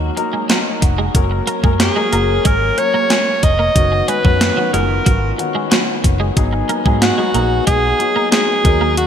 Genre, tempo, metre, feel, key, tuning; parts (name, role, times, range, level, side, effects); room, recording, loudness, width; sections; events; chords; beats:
1980s-style pop; 92 BPM; 4/4; straight; A4 = 437 Hz
warm concert grand piano; accompaniment; 0.0-9.1 s; D#3 to A#5; -20 LUFS; left 4 dB; lush chorus
vintage muted fingered electric bass; bass; 0.0-9.1 s; E#1 to G#2; -19 LUFS; equal
twelve-string electric guitar; riff; 0.2-8.9 s; F#3 to A#3; -24 LUFS; right 4 dB; ensemble chorus, digital delay
gated 80s digital drum machine; drums; 0.2-9.1 s; hi-hat, kick drum, snare drum; -16 LUFS; equal; gated reverb, gated reverb snare, overdrive
bright alto saxophone; melody; 1.8-9.1 s; F#4 to D#5; -17 LUFS; right 1 dB
moderate lush hall reverb, RT60 2.9 s; bright 1980s-style digital production; -13 LUFS; side -8 dB against mid
0.0-9.1 A section
grand piano fill 0.2-1.1
0.0 D#m; 1.1 F#; 3.8 Badd9/F#; 6.4 G#m7
0.50 | 1.15 1.80 2.45 3.11 | 3.76 4.41 5.06 5.71 | 6.37 7.02 7.67 8.32 | 8.98